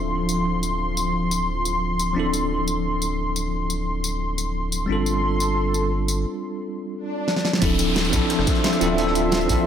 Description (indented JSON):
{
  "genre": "liquid drum and bass",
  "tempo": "176 BPM",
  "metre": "4/4",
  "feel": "straight",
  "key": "D minor",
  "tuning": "A4 = 441 Hz",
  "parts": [
    { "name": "bell-like tine electric piano", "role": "accompaniment", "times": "0.0-9.7 s", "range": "F3 to A4", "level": "-25 LUFS", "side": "equal", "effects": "fast stereo tremolo, diffuse ambient delay" },
    { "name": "lush unison pad", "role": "sustained chords", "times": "0.0-9.7 s", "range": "F3 to C6", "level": "-26 LUFS", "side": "equal", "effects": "chorus" },
    { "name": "saturated sub bass", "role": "bass", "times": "0.0-9.6 s", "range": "D1 to A1", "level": "-27 LUFS", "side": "equal", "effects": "none" },
    { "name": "pop drum kit", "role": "drums", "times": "0.3-9.6 s", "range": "hi-hat, rim click, snare drum, tambourine", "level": "-26 LUFS", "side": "left 1 dB", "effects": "studio reverb" },
    { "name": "swell and downlifter", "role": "sound effects", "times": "7.0-9.7 s", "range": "none", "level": "-28 LUFS", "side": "left 1 dB", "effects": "none" },
    { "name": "crunchy breakbeat drum kit", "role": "drums", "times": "7.6-9.6 s", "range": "hi-hat, snare drum", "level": "-34 LUFS", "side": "equal", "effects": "none" },
    { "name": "electronic kick drum", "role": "drums", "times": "7.6-9.6 s", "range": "none", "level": "-24 LUFS", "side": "equal", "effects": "studio reverb" }
  ],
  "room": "moderate plate reverb, RT60 1.4 s",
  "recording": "dreamy mix soaked in reverb",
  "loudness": "-20 LUFS",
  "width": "side -9 dB against mid",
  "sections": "0.0-7.6 A section; 7.6-9.7 B section",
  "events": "break 6.3-7.6; swell 7.0-7.6; drum fill 7.3-7.6; drop 7.6-9.7",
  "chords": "0.0 Dm9; 4.9 G9sus4; 7.6 Dm9",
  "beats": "0.12 0.46 | 0.80 1.14 1.48 1.82 | 2.16 2.50 2.85 3.19 | 3.53 3.87 4.21 4.55 | 4.89 5.23 5.57 5.91 | 6.25 6.60 6.94 7.28 | 7.62 7.96 8.30 8.64 | 8.98 9.32 9.66"
}